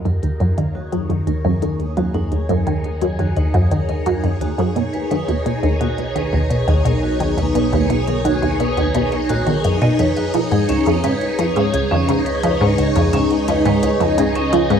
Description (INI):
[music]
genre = ambient, sequencer-driven space music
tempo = 86 BPM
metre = 4/4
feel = straight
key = Eb minor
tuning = A4 = 438 Hz
[part]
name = phased string machine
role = sustained chords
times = 0.0-14.8 s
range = Eb4 to Db5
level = -22 LUFS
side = left 1 dB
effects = ensemble chorus, phaser
[part]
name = analog drone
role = bass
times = 0.0-14.8 s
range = B1 to Eb2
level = -27 LUFS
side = left 1 dB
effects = chorus
[part]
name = vibraphone with medium hard mallets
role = arpeggios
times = 0.1-14.8 s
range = Db4 to D#5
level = -26 LUFS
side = right 2 dB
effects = auto-pan, analog delay
[part]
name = resonant blip pluck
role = riff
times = 0.1-14.8 s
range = Db2 to Gb3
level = -18 LUFS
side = equal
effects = phaser, wide subtle chorus, analog delay
[part]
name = minimal click drum kit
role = percussion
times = 0.1-14.8 s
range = hi-hat, toms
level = -34 LUFS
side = left 6 dB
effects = analog delay
[sound]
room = moderate plate reverb, RT60 2.3 s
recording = none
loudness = -16 LUFS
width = side -8 dB against mid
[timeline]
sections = 0.0-14.8 A section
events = fade-in on vibraphone 0.0-14.8; fade-in on string machine 0.0-14.8; fade-in on drum 0.0-14.8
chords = 0.0 Ebm7; 4.8 B; 10.3 Db7